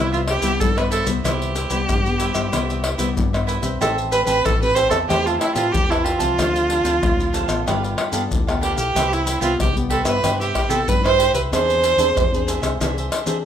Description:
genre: samba and choro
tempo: 93 BPM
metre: 4/4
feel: straight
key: C major, A minor from 3.8 s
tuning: A4 = 441 Hz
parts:
  - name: clear viola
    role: melody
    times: 0.0-12.4 s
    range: E4 to B#4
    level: -20 LUFS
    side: right 3 dB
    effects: none
  - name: cavaquinho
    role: accompaniment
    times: 0.0-13.4 s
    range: D4 to A5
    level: -26 LUFS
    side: right 4 dB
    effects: none
  - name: nylon-string guitar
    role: accompaniment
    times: 0.0-13.4 s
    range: G2 to B4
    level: -27 LUFS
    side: left 5 dB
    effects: none
  - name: fingered electric bass with an envelope filter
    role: bass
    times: 0.0-13.4 s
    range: G1 to E3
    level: -26 LUFS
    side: left 1 dB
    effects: none
  - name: maracas, pandeiro, tamborim and surdo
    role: percussion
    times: 0.1-13.4 s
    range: none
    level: -23 LUFS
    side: left 2 dB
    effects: none
room: moderate large studio reverb, RT60 0.9 s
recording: minimal, uncompressed stereo recording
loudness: -17 LUFS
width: side -9 dB against mid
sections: 0.0-3.8 A section; 3.8-13.4 B section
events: none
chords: 0.0 Cmaj7; 3.8 Am9; 6.4 Dm9; 7.7 G9; 9.0 Cmaj7; 11.5 E7b13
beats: 0.60 | 1.25 1.89 2.53 3.17 | 3.81 4.46 5.10 5.74 | 6.38 7.03 7.67 8.31 | 8.95 9.60 10.24 10.88 | 11.52 12.16 12.81 13.45

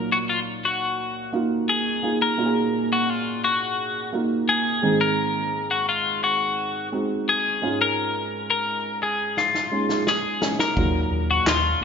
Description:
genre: piano-driven pop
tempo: 86 BPM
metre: 4/4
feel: straight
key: unclear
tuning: A4 = 442 Hz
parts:
  - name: twelve-string electric guitar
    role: melody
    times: 0.0-11.8 s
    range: F4 to Bb4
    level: -23 LUFS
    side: left 3 dB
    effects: none
  - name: felt-muted upright piano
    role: accompaniment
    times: 0.0-11.8 s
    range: Ab2 to Ab4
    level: -25 LUFS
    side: right 2 dB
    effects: none
  - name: natural country drum kit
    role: drums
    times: 9.4-11.6 s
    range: handclaps, kick drum, snare drum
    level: -25 LUFS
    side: equal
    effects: none
  - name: organ-like FM bass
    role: bass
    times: 10.8-11.8 s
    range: Eb2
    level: -25 LUFS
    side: equal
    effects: none
room: moderate concert hall reverb, RT60 2.1 s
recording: recorded in a church or concert hall, nothing above 7.5 kHz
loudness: -20 LUFS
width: side -6 dB against mid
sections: 0.0-11.8 A section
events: drum fill 9.4-10.8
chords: 0.0 Ebmadd9; 4.8 Ab; 7.6 Dbadd9; 10.8 Ebmadd9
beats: 0.29 0.99 1.68 | 2.38 3.08 3.78 4.48 | 5.18 5.88 6.58 7.28 | 7.97 8.67 9.37 10.07 | 10.77 11.47

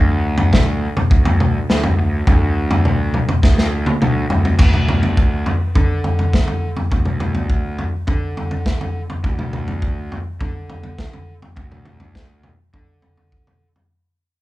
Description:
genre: psychedelic rock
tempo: 103 BPM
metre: 4/4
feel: straight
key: unclear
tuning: A4 = 441 Hz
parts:
  - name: fuzz picked electric bass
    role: bass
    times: 0.0-13.7 s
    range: D2 to D3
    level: -22 LUFS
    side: right 1 dB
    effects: overdrive
  - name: crunchy breakbeat drum kit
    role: drums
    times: 0.4-13.9 s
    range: crash cymbal, kick drum, snare drum, toms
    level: -16 LUFS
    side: equal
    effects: none
room: light reverb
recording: band playing live in one room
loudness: -15 LUFS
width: side -17 dB against mid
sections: 0.0-4.6 A section; 4.6-13.9 B section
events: drum fill 3.4-4.6; fade-out 4.6-13.9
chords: none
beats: 0.53 1.11 1.69 | 2.27 2.85 3.43 4.01 | 4.59 5.17 5.75 6.33 | 6.92 7.50 8.08 8.66 | 9.24 9.83 10.41 10.99 | 11.57 12.16 12.74 13.32

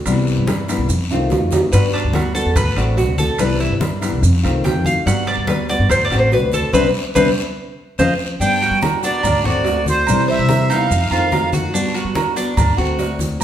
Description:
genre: latin, Cuban son and guajira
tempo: 144 BPM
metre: 4/4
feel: straight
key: G major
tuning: A4 = 440 Hz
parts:
  - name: nylon-string guitar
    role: accompaniment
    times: 0.0-13.4 s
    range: C3 to F#4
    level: -22 LUFS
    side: left 2 dB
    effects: none
  - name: upright bass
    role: bass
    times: 0.1-13.4 s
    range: A1 to G3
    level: -20 LUFS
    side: equal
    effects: none
  - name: congas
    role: percussion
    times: 0.1-13.4 s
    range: none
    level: -24 LUFS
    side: left 1 dB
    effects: none
  - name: guiro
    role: percussion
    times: 0.1-13.4 s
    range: none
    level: -33 LUFS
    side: left 4 dB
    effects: none
  - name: maracas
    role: percussion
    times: 0.1-13.4 s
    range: none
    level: -32 LUFS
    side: right 5 dB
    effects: none
  - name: timbales and agogo bells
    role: percussion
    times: 0.1-13.4 s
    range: none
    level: -24 LUFS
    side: right 4 dB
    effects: none
  - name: Cuban tres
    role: arpeggios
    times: 1.7-13.2 s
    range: D4 to G5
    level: -20 LUFS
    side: left 1 dB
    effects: none
  - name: accordion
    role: melody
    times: 8.4-11.5 s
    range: C5 to G5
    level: -19 LUFS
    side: right 2 dB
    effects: light tremolo tuning
room: wet large studio reverb, RT60 1.3 s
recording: band playing live in one room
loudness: -14 LUFS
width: side -10 dB against mid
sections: 0.0-8.4 A section; 8.4-13.4 B section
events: Cuban tres solo 0.0-8.4; drum fill 1.1-1.7; band accent 6.7-8.4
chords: 0.1 Cmaj7; 0.9 F7; 1.7 Gmaj7; 2.6 D7; 3.4 Cmaj7; 4.2 F7; 5.1 Gmaj7; 5.9 D7; 6.7 Cmaj7; 7.6 F7; 8.4 Gmaj7; 9.2 D7; 10.1 Cmaj7; 10.9 F7; 11.7 Gmaj7; 12.6 D7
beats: | 0.06 0.47 0.89 1.31 | 1.73 2.14 2.56 2.98 | 3.40 3.81 4.23 4.65 | 5.07 5.48 5.90 6.32 | 6.73 7.15 7.57 7.99 | 8.40 8.82 9.24 9.65 | 10.07 10.49 10.91 11.32 | 11.74 12.16 12.58 12.99 | 13.41

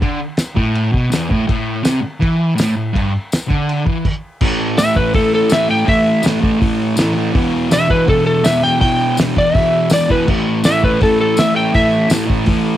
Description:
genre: garage rock duo or trio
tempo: 164 BPM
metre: 4/4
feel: straight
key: unclear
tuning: A4 = 440 Hz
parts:
  - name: fuzz guitar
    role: riff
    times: 0.0-12.8 s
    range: E2 to A3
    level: -16 LUFS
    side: equal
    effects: distortion, cassette tape
  - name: cloth-damped thuddy drum kit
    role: drums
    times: 0.0-12.6 s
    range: crash cymbal, hi-hat, kick drum, snare drum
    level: -18 LUFS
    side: equal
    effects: cassette tape
  - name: tambourine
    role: percussion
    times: 0.4-12.2 s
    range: none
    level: -28 LUFS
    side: left 4 dB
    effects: none
  - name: electric slide guitar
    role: melody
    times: 4.8-12.1 s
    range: A4 to G5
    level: -15 LUFS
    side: equal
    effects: cassette tape
room: studio reverb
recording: home recording on cassette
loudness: -13 LUFS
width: side -12 dB against mid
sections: 0.0-4.4 A section; 4.4-12.8 B section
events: stop 4.1-4.4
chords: 0.0 E5; 1.5 A5; 7.3 E5; 10.3 A5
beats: | 0.01 0.38 0.75 1.12 | 1.48 1.85 2.22 2.59 | 2.95 3.32 3.69 4.05 | 4.42 4.79 5.15 5.52 | 5.88 6.25 6.62 6.98 | 7.35 7.71 8.08 8.45 | 8.81 9.18 9.54 9.91 | 10.27 10.64 11.01 11.37 | 11.74 12.10 12.47

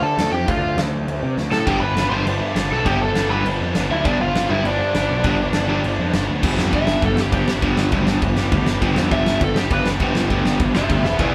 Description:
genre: punk rock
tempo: 202 BPM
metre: 4/4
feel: straight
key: unclear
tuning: A4 = 440 Hz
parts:
  - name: lead guitar through a small cranked amp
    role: melody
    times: 0.0-11.3 s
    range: D4 to C6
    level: -25 LUFS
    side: equal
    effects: overdrive
  - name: fuzz picked electric bass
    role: bass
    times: 0.0-11.3 s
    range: E1 to D3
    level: -26 LUFS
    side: equal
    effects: overdrive
  - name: big rock drum kit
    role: drums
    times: 0.2-11.3 s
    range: crash cymbal, kick drum, snare drum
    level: -25 LUFS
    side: equal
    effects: none
  - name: crunchy overdriven guitar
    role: riff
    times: 1.7-11.3 s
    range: E2 to G3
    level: -27 LUFS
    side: equal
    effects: none
  - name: distorted electric guitar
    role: riff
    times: 1.7-11.3 s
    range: G2 to G#4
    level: -28 LUFS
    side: equal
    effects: distortion
  - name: raw garage guitar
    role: riff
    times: 1.7-11.3 s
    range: G2 to G4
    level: -28 LUFS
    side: equal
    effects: none
room: light reverb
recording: band playing live in one room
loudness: -19 LUFS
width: mono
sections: 0.0-6.4 A section; 6.4-11.3 B section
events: half time 0.0-6.4; drum fill 1.4, 11.0; lead electric guitar solo 6.4-11.3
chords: 0.0 Dm; 1.7 G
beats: 0.18 | 0.48 0.78 1.08 1.38 | 1.67 1.97 2.27 2.57 | 2.87 3.16 3.46 3.76 | 4.06 4.35 4.65 4.95 | 5.25 5.54 5.84 6.14 | 6.44 6.74 7.03 7.33 | 7.63 7.92 8.22 8.52 | 8.82 9.11 9.41 9.71 | 10.01 10.30 10.60 10.89 | 11.19

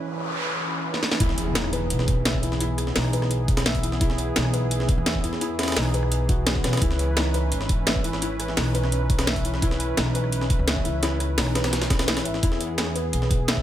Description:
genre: liquid drum and bass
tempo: 171 BPM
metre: 4/4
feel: straight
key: E major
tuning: A4 = 439 Hz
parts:
  - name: warm analog pad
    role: sustained chords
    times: 0.0-13.6 s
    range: E3 to B4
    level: -31 LUFS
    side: right 2 dB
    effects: chorus, sidechain pumping
  - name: felt-muted upright piano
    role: arpeggios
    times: 0.0-13.6 s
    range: D#4 to E5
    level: -30 LUFS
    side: left 3 dB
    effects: vintage 12-bit sampler grit, dub echo
  - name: noise sweep and impact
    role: sound effects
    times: 0.0-2.6 s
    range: none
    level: -30 LUFS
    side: equal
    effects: none
  - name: drum and bass drum kit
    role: drums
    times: 0.9-13.6 s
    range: hi-hat, rim click, snare drum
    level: -27 LUFS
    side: equal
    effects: none
  - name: upright bass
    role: bass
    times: 1.2-13.6 s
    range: G#1 to E2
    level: -26 LUFS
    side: equal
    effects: high-pass filter
  - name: breakbeat sampler-style drum kit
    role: drums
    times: 1.2-13.6 s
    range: hi-hat, snare drum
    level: -30 LUFS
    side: equal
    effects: high-pass filter on hats, high-pass filter on snare, high-pass filter on room
  - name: electronic kick drum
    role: drums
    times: 1.2-13.6 s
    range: none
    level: -24 LUFS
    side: equal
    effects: none
room: light reverb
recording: none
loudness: -21 LUFS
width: side -12 dB against mid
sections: 0.0-1.2 A section; 1.2-13.6 B section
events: break 0.0-1.2; build-up 0.0-1.2; noise sweep 0.0-1.2; drum fill 0.9; drop 1.2-13.6; impact 1.2-2.6; kick drops out 12.1-12.4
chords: 0.0 C#m9; 1.2 Emaj7; 6.8 C#m9; 12.4 E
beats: 0.15 0.50 0.85 | 1.20 1.55 1.90 2.25 | 2.61 2.96 3.31 3.66 | 4.01 4.36 4.71 5.06 | 5.41 5.76 6.12 6.46 | 6.82 7.17 7.52 7.87 | 8.22 8.57 8.92 9.27 | 9.62 9.97 10.32 10.68 | 11.03 11.38 11.73 12.08 | 12.43 12.78 13.13 13.48

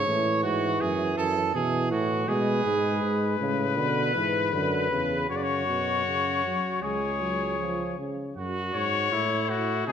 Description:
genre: classical, imitative canzona for brass ensemble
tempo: 80 BPM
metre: 4/4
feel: straight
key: F# minor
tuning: A4 = 440 Hz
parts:
  - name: clear trumpet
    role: second line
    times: 0.0-9.9 s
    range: D#4 to C#5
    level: -29 LUFS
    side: right 3 dB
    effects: none
  - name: dark euphonium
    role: accompaniment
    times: 0.0-8.4 s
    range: B2 to G#3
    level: -30 LUFS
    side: right 1 dB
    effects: none
  - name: mellow bass trombone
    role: bass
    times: 0.0-9.9 s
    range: C#2 to B#2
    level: -31 LUFS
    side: right 2 dB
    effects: none
  - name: clear trumpet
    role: melody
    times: 2.3-9.9 s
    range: F#4 to D5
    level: -28 LUFS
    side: left 9 dB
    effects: none
room: wet concert hall reverb, RT60 1.8 s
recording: none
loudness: -24 LUFS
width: side -8 dB against mid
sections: 0.0-8.4 A section; 8.4-9.9 B section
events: none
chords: 0.0 A; 0.8 F#m11; 2.3 G#dim; 5.3 C#sus4/F#; 6.8 C#; 8.4 F#m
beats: 0.07 0.81 1.54 | 2.28 3.02 3.77 4.53 | 5.29 6.06 6.83 7.60 | 8.37 9.12 9.88

